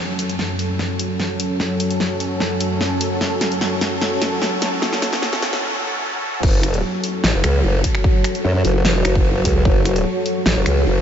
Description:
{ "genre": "heavy wobble dubstep", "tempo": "149 BPM", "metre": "4/4", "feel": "half-time", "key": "F# minor", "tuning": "A4 = 440 Hz", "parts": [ { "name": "supersaw pad", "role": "sustained chords", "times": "0.0-11.0 s", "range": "F#2 to C#5", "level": "-21 LUFS", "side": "equal", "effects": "sidechain pumping, low-pass filter" }, { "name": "big-room dance drum kit", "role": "drums", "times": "0.2-10.7 s", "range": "crash cymbal, finger snaps, hi-hat, snare drum", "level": "-22 LUFS", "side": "equal", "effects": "small room ambience" }, { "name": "formant-sweep wobble bass", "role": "bass", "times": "6.4-11.0 s", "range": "F#1 to F#2", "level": "-17 LUFS", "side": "equal", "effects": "chorus, overdrive" }, { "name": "electronic kick drum", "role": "drums", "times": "6.4-9.7 s", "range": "none", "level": "-17 LUFS", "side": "equal", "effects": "small room ambience" } ], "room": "moderate huge ambient reverb, RT60 8.4 s", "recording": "dreamy mix soaked in reverb, high-pass filter, nothing above 7.7 kHz", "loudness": "-17 LUFS", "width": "side -9 dB against mid", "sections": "0.0-6.4 A section; 6.4-11.0 B section", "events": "build-up 0.0-6.4; drum fill 0.0-5.6; filter sweep on supersaw synth 0.0-6.4; break 5.6-6.4; drop 6.4-11.0", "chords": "0.0 F#m" }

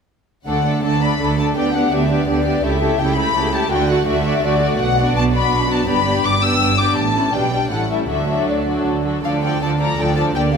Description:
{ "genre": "quick classical-period movement for string orchestra", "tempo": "165 BPM", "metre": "3/4", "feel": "rubato", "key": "D major", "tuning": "A4 = 439 Hz", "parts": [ { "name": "dark studio violin section", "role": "melody", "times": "0.5-10.6 s", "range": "D5 to E6", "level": "-20 LUFS", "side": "left 5 dB", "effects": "none" }, { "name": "warm symphonic violin section", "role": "second line", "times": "0.5-10.5 s", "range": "D4 to D5", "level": "-23 LUFS", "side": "left 3 dB", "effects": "none" }, { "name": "rich studio viola section", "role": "accompaniment", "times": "0.5-10.6 s", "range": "E3 to F#4", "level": "-21 LUFS", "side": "right 2 dB", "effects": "none" }, { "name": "rich symphonic cello section", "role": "bass", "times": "0.5-10.6 s", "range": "G2 to D3", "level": "-23 LUFS", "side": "right 4 dB", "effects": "none" }, { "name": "warm symphonic double bass section", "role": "bass", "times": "0.5-10.6 s", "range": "G1 to D2", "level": "-23 LUFS", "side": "right 3 dB", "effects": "none" } ], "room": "wet concert hall reverb, RT60 2.0 s", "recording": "none", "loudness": "-15 LUFS", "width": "side -6 dB against mid", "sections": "0.5-9.3 A section; 9.3-10.6 B section", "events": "none", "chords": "0.5 D; 1.6 G/D; 2.7 A7/C#; 3.7 D; 4.8 Bm; 5.9 G; 7.0 A; 7.3 G/B; 7.7 A7; 8.1 D; 9.3 Dm" }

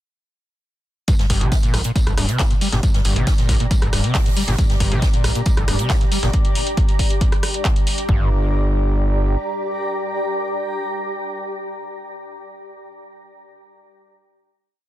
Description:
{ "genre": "driving peak-time techno", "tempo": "137 BPM", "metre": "4/4", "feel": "straight", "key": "G minor", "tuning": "A4 = 440 Hz", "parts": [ { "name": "screaming distorted acid line", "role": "riff", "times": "1.1-8.3 s", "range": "G2 to G3", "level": "-24 LUFS", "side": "equal", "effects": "distortion, ensemble chorus, sidechain pumping, ping-pong delay" }, { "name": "compact cocktail drum kit", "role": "drums", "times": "1.1-6.3 s", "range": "hi-hat, snare drum, tambourine", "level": "-31 LUFS", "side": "right 1 dB", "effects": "sidechain pumping on hats, high-pass filter on hats, soft clipping on snare, high-pass filter on snare, sidechain pumping on perc, high-pass filter on perc, high-pass filter on room" }, { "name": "electronic kick drum", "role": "drums", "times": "1.1-8.2 s", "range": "none", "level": "-18 LUFS", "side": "equal", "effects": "none" }, { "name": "techno drum kit", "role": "drums", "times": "1.1-8.1 s", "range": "handclaps, hi-hat, rim click", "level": "-26 LUFS", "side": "equal", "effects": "soft clipping on snare" }, { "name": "granular cloud pad", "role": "texture", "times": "2.6-12.3 s", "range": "G4 to Bb5", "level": "-27 LUFS", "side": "equal", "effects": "built-in reverb, sidechain pumping" }, { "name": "gritty driven synth bass", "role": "bass", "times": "1.3-9.4 s", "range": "D1 to Bb1", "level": "-20 LUFS", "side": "equal", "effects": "tube saturation, sidechain pumping" } ], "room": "small room ambience", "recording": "dense, heavily limited modern master", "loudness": "-16 LUFS", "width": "side -14 dB against mid", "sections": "1.1-8.1 drop; 8.1-11.6 final chord", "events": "drop 1.1-8.1", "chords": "1.1 Gm" }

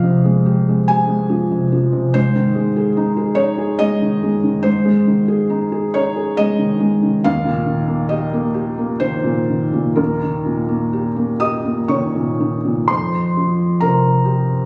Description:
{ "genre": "neoclassical minimalist piano", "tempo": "61-74 BPM", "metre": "3/4", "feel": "rubato", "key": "F minor", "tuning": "A4 = 440 Hz", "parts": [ { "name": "felt-muted upright piano", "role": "solo", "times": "0.0-14.7 s", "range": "Eb2 to Eb6", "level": "-17 LUFS", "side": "equal", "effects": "none" } ], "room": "wet recital hall reverb, RT60 1.5 s", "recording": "recorded on a phone in the room, club reverb", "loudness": "-17 LUFS", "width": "mono", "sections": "0.0-12.9 A section; 12.9-14.7 B section", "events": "none", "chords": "0.0 Fmadd9; 2.2 Ab; 7.3 Eb; 12.9 Fsus2" }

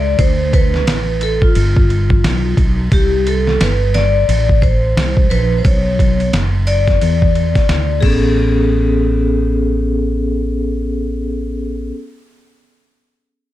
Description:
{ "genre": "hip hop, jazz-hop", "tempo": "88 BPM", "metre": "4/4", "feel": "swing 60% on 16ths", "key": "A major", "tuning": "A4 = 440 Hz", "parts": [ { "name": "vibraphone with hard mallets", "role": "accompaniment", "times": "0.0-11.9 s", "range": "B3 to D5", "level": "-18 LUFS", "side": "left 2 dB", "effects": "plate reverb" }, { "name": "mellow fretless electric bass", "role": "bass", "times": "0.0-11.9 s", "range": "F#1 to E2", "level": "-16 LUFS", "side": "equal", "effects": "ensemble chorus" }, { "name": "dusty soul sampler-style drum kit", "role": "drums", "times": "0.2-8.2 s", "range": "crash cymbal, hi-hat, kick drum, ride cymbal, snare drum", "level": "-16 LUFS", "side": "equal", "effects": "overdrive" } ], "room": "light reverb", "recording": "dark, warm production", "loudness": "-12 LUFS", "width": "side -14 dB against mid", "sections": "0.0-8.4 A section; 8.4-11.1 B section", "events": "vibraphone solo 0.0-8.4", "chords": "0.2 D5; 1.5 G7; 2.9 C5; 5.6 Bsus2; 7.0 Dsus2; 8.0 Amaj9" }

